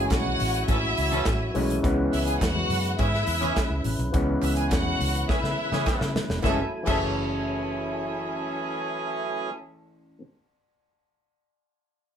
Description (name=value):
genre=disco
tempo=104 BPM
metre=4/4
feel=straight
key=F# minor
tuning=A4 = 439 Hz
part: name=rich studio violin section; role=second line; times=0.0-9.5 s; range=C#4 to G#5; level=-30 LUFS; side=left 1 dB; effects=none
part: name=overdriven clav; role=accompaniment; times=0.0-10.2 s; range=E3 to G#4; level=-30 LUFS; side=left 1 dB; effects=auto-wah
part: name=percussive tonewheel organ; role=sustained chords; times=0.0-9.5 s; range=C#3 to G#5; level=-34 LUFS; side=right 2 dB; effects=overdrive, slow rotary speaker
part: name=vintage muted fingered electric bass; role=bass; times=0.0-10.2 s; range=E1 to C#3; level=-29 LUFS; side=equal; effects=none
part: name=modern studio drum kit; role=drums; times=0.1-7.0 s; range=crash cymbal, handclaps, hi-hat, kick drum, snare drum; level=-29 LUFS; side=equal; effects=none
part: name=congas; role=percussion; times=0.1-7.0 s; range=none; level=-37 LUFS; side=left 5 dB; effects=none
part: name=group handclap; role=percussion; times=0.1-7.0 s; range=none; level=-41 LUFS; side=right 4 dB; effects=none
part: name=warm horn section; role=stabs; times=0.7-9.5 s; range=E3 to A4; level=-32 LUFS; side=right 2 dB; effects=none
room=moderate small room reverb, RT60 0.5 s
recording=band playing live in one room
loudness=-23 LUFS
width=side -8 dB against mid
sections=0.0-6.4 A section; 6.4-8.7 B section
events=drum fill 5.3-6.4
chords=0.0 F#m9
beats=0.11 0.68 1.26 | 1.83 2.41 2.98 3.56 | 4.13 4.71 5.29 5.86 | 6.44 7.02 7.59 8.17